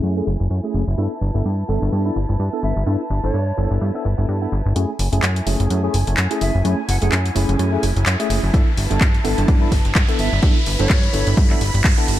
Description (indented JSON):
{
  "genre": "filtered disco house",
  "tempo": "127 BPM",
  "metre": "4/4",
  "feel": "swing 56% on 16ths",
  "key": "F# minor",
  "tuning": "A4 = 440 Hz",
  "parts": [
    { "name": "tine electric piano", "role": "accompaniment", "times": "0.0-12.2 s", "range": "A3 to A4", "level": "-24 LUFS", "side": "equal", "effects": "medium stereo tremolo, phaser, sidechain pumping, low-pass filter" },
    { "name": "muted studio violin section", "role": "sustained chords", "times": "0.0-12.2 s", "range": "A3 to B5", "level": "-30 LUFS", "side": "right 1 dB", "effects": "sidechain pumping, low-pass filter" },
    { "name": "plucky analog bass", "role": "bass", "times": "0.0-12.2 s", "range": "F#1 to G2", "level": "-19 LUFS", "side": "equal", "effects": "sidechain pumping, low-pass filter" },
    { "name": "breathy bright jazz flute", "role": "melody", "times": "2.6-7.1, 10.2-11.3 s", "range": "C#5 to F#5", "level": "-30 LUFS", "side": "equal", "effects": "sidechain pumping, low-pass filter, tape echo" },
    { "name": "house drum kit", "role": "drums", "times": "4.8-12.2 s", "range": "handclaps, hi-hat", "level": "-24 LUFS", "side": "left 1 dB", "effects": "sidechain pumping on hats, small room reverb" },
    { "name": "riser", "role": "sound effects", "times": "6.8-12.2 s", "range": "none", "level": "-29 LUFS", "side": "equal", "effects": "none" },
    { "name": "electronic kick drum", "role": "drums", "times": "8.5-12.0 s", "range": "none", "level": "-16 LUFS", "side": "equal", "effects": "overdrive, small room reverb" }
  ],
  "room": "light reverb",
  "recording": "echo-heavy mix",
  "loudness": "-16 LUFS",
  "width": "side -13 dB against mid",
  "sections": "0.0-4.8 A section; 4.8-12.2 B section",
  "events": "filter sweep 0.0-4.8, 4.8-12.2; build-up 4.8-12.2; riser 6.8-12.2",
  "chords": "0.0 F#m9; 1.0 G69; 4.8 F#m9; 8.5 G69",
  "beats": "0.03 0.51 | 0.98 1.45 1.92 2.40 | 2.87 3.34 3.81 4.29 | 4.76 5.23 5.70 6.17 | 6.65 7.12 7.59 8.06 | 8.54 9.01 9.48 9.96 | 10.43 10.90 11.37 11.85"
}